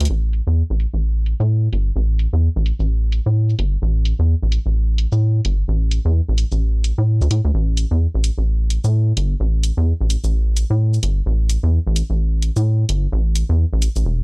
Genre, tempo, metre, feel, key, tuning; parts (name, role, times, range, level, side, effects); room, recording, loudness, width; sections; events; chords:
minimal techno; 129 BPM; 4/4; swing 60% on 16ths; A4 = 440 Hz
rubbery square bass; bass; 0.0-14.2 s; E1 to A2; -16 LUFS; equal
electronic hi-hat and cabasa; drums; 0.0-14.0 s; -28 LUFS; left 1 dB; low-pass filter on perc, low-pass filter on hats, low-pass filter on snare
little or no reverb; dry, gritty hardware recording, transformer saturation, cassette tape; -16 LUFS; side -36 dB against mid
0.1-14.2 A section